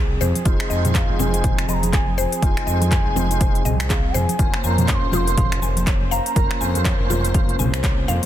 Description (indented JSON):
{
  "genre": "afro house",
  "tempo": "122 BPM",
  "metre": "4/4",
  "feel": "swing 59% on 16ths",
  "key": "F minor",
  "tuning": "A4 = 440 Hz",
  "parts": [
    { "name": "warm analog pad", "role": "sustained chords", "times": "0.0-8.3 s", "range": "F3 to C5", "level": "-29 LUFS", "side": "equal", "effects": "chorus, sidechain pumping" },
    { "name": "mallet-like synth pluck", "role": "arpeggios", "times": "0.0-8.2 s", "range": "C4 to Ab5", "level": "-29 LUFS", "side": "left 4 dB", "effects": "chorus, sidechain pumping, dub echo" },
    { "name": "smooth gliding synth bass", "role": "bass", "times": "0.0-8.2 s", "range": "F1 to F2", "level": "-23 LUFS", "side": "equal", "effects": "sidechain pumping" },
    { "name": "afro-pop drum kit", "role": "drums", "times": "0.2-8.3 s", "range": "finger snaps, handclaps, hi-hat, shaker, toms", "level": "-26 LUFS", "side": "left 2 dB", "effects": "soft clipping on snare" },
    { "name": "congas", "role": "percussion", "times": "0.2-8.3 s", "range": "none", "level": "-28 LUFS", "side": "right 3 dB", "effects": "none" },
    { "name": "tonewheel organ", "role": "stabs", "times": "0.5-7.6 s", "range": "Ab3 to C5", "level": "-29 LUFS", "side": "right 2 dB", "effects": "chorus vibrato, fast rotary speaker, sidechain pumping, dub echo" },
    { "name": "electronic kick drum", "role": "drums", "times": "0.5-8.0 s", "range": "none", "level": "-21 LUFS", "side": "equal", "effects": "overdrive" },
    { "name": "mellow bansuri", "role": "melody", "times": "0.9-6.8 s", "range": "F5 to Eb6", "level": "-28 LUFS", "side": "right 1 dB", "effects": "dub echo" }
  ],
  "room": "digital ambience",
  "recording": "dense, heavily limited modern master",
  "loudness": "-17 LUFS",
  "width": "side -12 dB against mid",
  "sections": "0.0-8.3 A section",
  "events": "none",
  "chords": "0.0 Fm7; 4.4 Bbmadd9/F"
}